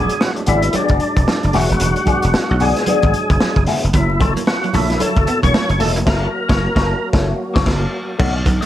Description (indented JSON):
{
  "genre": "funk",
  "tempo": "113 BPM",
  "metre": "4/4",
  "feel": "swing 60% on 16ths",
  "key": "unclear",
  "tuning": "A4 = 444 Hz",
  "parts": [
    { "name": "percussive tonewheel organ", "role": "melody", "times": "0.0-7.1 s", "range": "D4 to C#5", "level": "-21 LUFS", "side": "left 1 dB", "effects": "overdrive, chorus vibrato, slow rotary speaker" },
    { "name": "electric guitar at the edge of break-up", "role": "accompaniment", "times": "0.0-8.7 s", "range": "A3 to E5", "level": "-23 LUFS", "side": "left 5 dB", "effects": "wah" },
    { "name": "percussive tonewheel organ", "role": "sustained chords", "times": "0.0-8.2 s", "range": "F#3 to F#4", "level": "-27 LUFS", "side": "right 1 dB", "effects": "slow rotary speaker, chorus vibrato" },
    { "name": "dry thumbed slap bass", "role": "bass", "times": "0.0-8.6 s", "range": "D#1 to B1", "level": "-18 LUFS", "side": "equal", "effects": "none" },
    { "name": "crunchy breakbeat drum kit", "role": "drums", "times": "0.1-8.7 s", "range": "crash cymbal, hi-hat, kick drum, snare drum", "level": "-19 LUFS", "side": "equal", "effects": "none" },
    { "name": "congas", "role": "percussion", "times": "0.2-8.6 s", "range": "none", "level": "-26 LUFS", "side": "right 5 dB", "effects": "none" },
    { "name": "clean electric guitar", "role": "riff", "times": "3.9-8.7 s", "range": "F#3 to B3", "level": "-26 LUFS", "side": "right 4 dB", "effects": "none" }
  ],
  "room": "light reverb, small room ambience",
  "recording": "none",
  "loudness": "-14 LUFS",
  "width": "side -12 dB against mid",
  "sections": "0.0-8.2 A section",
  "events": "band accent 6.1-8.2",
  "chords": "0.0 E9; 3.9 F#7#9"
}